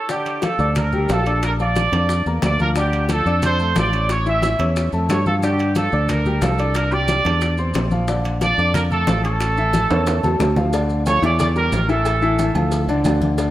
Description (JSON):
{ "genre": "latin, salsa", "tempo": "181 BPM", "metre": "4/4", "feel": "straight", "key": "unclear", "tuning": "A4 = 440 Hz", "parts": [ { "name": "bright trumpet section", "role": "melody", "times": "0.0-12.5 s", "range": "G4 to E5", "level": "-22 LUFS", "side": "right 2 dB", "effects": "none" }, { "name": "warm grand piano", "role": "accompaniment", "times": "0.1-13.5 s", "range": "D3 to D6", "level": "-23 LUFS", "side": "left 2 dB", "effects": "none" }, { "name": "bongos and cowbell", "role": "percussion", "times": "0.1-13.5 s", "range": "none", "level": "-30 LUFS", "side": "left 4 dB", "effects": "none" }, { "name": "congas", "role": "percussion", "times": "0.1-13.5 s", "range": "none", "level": "-27 LUFS", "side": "left 1 dB", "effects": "none" }, { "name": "maracas", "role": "percussion", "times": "0.1-13.5 s", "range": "none", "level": "-38 LUFS", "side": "right 4 dB", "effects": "none" }, { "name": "timbales and agogo bells", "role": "percussion", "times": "0.3-13.5 s", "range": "none", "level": "-29 LUFS", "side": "right 4 dB", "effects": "none" }, { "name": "fingered electric bass", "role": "bass", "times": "0.6-13.5 s", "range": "A1 to G2", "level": "-20 LUFS", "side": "equal", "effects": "none" } ], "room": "moderate lush hall reverb, RT60 2.6 s", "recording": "rough home demo mix", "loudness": "-16 LUFS", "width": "side -14 dB against mid", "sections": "0.1-10.7 A section; 10.7-13.5 B section", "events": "drum fill 9.7-10.7", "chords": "0.1 Gm7; 1.4 Bb; 2.8 Dm; 4.1 A; 5.4 Gm7; 6.8 Cadd9; 8.1 Bbmaj7; 9.4 A; 10.7 Dm; 11.4 Edim; 12.1 A5; 12.7 Dm" }